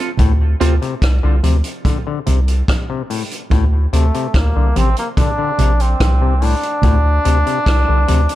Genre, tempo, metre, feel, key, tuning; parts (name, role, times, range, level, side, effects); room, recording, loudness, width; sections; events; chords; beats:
dub reggae; 72 BPM; 4/4; straight; A4 = 440 Hz
clean electric guitar; accompaniment; 0.0-0.7 s; C4 to A4; -25 LUFS; right 5 dB; lush chorus, dub echo
mellow clav; arpeggios; 0.2-8.2 s; A2 to D3; -23 LUFS; left 8 dB; dub echo
soft dub sub bass; bass; 0.2-8.3 s; A1 to D2; -14 LUFS; equal
vintage drum kit; drums; 0.2-8.3 s; hi-hat, kick drum, rim click; -19 LUFS; equal
congas; percussion; 0.2-8.3 s; -26 LUFS; right 5 dB; dub echo
brilliant trombone; melody; 3.9-8.3 s; A3 to D4; -19 LUFS; equal; dub echo
little or no reverb; dark, warm production; -13 LUFS; side -14 dB against mid
0.0-8.3 A section
break 0.0-3.5
0.0 D7(no3); 3.5 D5
| 0.19 1.02 1.85 2.68 | 3.51 4.34 5.17 6.00 | 6.83 7.66